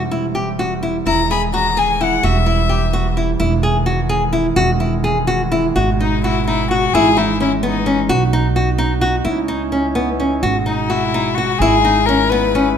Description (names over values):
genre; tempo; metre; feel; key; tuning
contemporary instrumental, chamber music in an uneven meter; 257 BPM (eighths); 5/8; straight; unclear; A4 = 440 Hz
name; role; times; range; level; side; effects
pipe organ, foundations; sustained chords; 0.0-12.8 s; B2 to F#4; -23 LUFS; equal; none
upright bass; bass; 0.0-12.7 s; E1 to C#2; -20 LUFS; right 2 dB; none
nylon-string guitar; arpeggios; 0.1-12.7 s; B3 to G#4; -18 LUFS; left 1 dB; none
warm violin; melody; 1.1-3.2, 6.0-8.0, 10.7-12.7 s; D#4 to B5; -18 LUFS; left 6 dB; none
room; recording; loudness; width
wet recital hall reverb, RT60 1.3 s; none; -14 LUFS; side -8 dB against mid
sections
0.0-5.8 A section; 5.8-12.8 B section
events
none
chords
0.0 C/E; 1.1 Emaj7; 2.2 C/E; 3.4 Emaj7; 5.8 G#m7; 6.9 Emaj7/G#; 8.1 B; 9.3 C#madd9; 10.4 G#m7; 11.6 Emaj7/G#